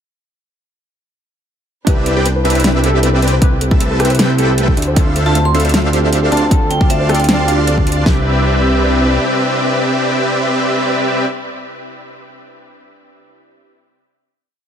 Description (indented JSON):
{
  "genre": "future bass",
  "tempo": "155 BPM",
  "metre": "4/4",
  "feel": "half-time",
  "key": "C major",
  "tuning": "A4 = 440 Hz",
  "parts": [
    { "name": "glassy digital keys", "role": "accompaniment", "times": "1.8-13.7 s", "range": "C4 to B4", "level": "-23 LUFS", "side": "right 2 dB", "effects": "chorus, sidechain pumping, tape echo" },
    { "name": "dark studio string section", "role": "sustained chords", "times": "1.9-11.3 s", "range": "C3 to B4", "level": "-26 LUFS", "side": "left 2 dB", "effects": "none" },
    { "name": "soft round pluck", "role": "arpeggios", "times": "1.9-8.2 s", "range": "A3 to F5", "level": "-25 LUFS", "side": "right 2 dB", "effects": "none" },
    { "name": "dense compressed supersaw", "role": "riff", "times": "1.9-11.3 s", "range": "C4 to C6", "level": "-17 LUFS", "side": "equal", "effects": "vintage 12-bit sampler grit, sidechain pumping, tape echo" },
    { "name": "fat analog bass", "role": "bass", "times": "1.9-9.2 s", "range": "C2 to D2", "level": "-15 LUFS", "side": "equal", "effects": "sidechain pumping" },
    { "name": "pop drum kit", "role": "drums", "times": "1.9-8.2 s", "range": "kick drum, snare drum", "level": "-13 LUFS", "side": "equal", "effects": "overdrive" },
    { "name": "pop drum kit", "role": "drums", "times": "1.9-8.0 s", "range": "hi-hat, rim click, snare drum", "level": "-18 LUFS", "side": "equal", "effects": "overdrive" },
    { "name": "vibraphone with hard mallets", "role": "melody", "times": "5.3-7.5 s", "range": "E5 to C6", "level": "-22 LUFS", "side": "right 1 dB", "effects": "sidechain pumping, tape echo" }
  ],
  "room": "light reverb, digital ambience",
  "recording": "none",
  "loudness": "-11 LUFS",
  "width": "side -8 dB against mid",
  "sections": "1.9-8.1 drop; 8.1-11.2 final chord",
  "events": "drop 1.9-8.1",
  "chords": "1.9 Cmaj7; 3.4 Am7/C; 4.8 Dm7; 6.3 G7sus4/D; 8.1 Cmaj7",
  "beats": "| 1.87 2.25 2.64 3.03 | 3.42 3.80 4.19 4.58 | 4.96 5.35 5.74 6.13 | 6.51 6.90 7.29 7.67 | 8.06 8.45 8.84 9.22 | 9.61 10.00 10.38 10.77"
}